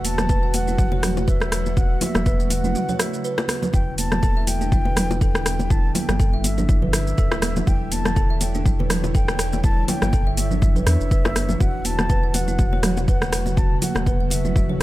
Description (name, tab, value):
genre	afro house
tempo	122 BPM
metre	4/4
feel	swing 56% on 16ths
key	E dorian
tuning	A4 = 441 Hz
part	breathy mellow concert flute	melody	0.0-14.8 s	E5 to A5	-30 LUFS	left 1 dB	diffuse ambient delay
part	ethereal airy pad	sustained chords	0.0-14.8 s	C#3 to C#5	-30 LUFS	right 1 dB	ensemble chorus, built-in reverb, sidechain pumping
part	round analog bass	bass	0.0-14.8 s	E1 to E2	-25 LUFS	equal	sidechain pumping
part	deep house drum kit	drums	0.0-14.8 s	hi-hat, rim click, shaker, toms	-26 LUFS	equal	overdrive
part	congas	percussion	0.1-14.8 s	none	-29 LUFS	right 3 dB	none
part	bongos	percussion	0.2-14.4 s	none	-28 LUFS	left 4 dB	none
part	kalimba	arpeggios	0.3-14.8 s	D4 to F#5	-30 LUFS	equal	sidechain pumping, diffuse ambient delay
part	electronic kick drum	drums	0.3-14.7 s	none	-20 LUFS	equal	none
room	small room ambience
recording	none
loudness	-18 LUFS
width	side -16 dB against mid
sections	0.0-14.8 A section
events	break 2.8-3.7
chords	0.0 F#m/E; 3.7 Em7; 11.6 F#m/E